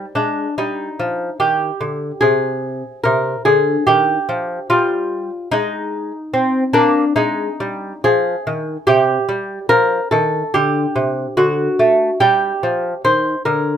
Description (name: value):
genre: classical, baroque-style dance for lute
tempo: 72 BPM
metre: 4/4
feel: rubato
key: G minor from 8.9 s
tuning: A4 = 442 Hz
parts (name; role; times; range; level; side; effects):
- lute; solo; 0.0-13.8 s; C3 to C5; -15 LUFS; equal; none
room: little or no reverb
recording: minimal, uncompressed stereo recording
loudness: -15 LUFS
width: side -9 dB against mid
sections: 0.0-13.8 A section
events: none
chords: 0.0 Fm13; 2.2 Ab/C; 3.9 Eb; 5.5 Ab5; 8.9 Cm; 10.5 D; 12.2 G5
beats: 0.57 1.40 | 2.23 3.05 3.88 4.70 | 5.52 6.33 7.16 8.04 | 8.87 9.69 10.53 11.37 | 12.21 13.04